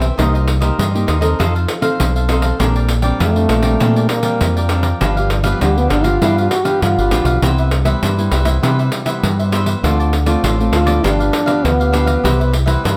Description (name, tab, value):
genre	samba and choro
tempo	100 BPM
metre	4/4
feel	straight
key	C major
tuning	A4 = 440 Hz
part	cavaquinho	accompaniment	0.0-13.0 s	D4 to G5	-25 LUFS	equal	none
part	nylon-string guitar	accompaniment	0.0-13.0 s	G2 to A4	-24 LUFS	equal	none
part	deep dub fingered electric bass	bass	0.0-13.0 s	G1 to C3	-18 LUFS	equal	none
part	pandeiro	percussion	0.0-13.0 s	none	-24 LUFS	equal	none
part	breathy trombone	melody	3.2-12.6 s	G3 to G4	-20 LUFS	equal	none
room	light reverb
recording	none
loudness	-15 LUFS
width	mono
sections	0.0-13.0 A section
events	trombone solo 0.0-13.0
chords	0.2 Cm7; 1.4 F7; 2.6 Bb69; 5.0 G7; 7.4 Cmaj7; 9.8 Dm7; 11.0 G7; 12.2 Cmaj7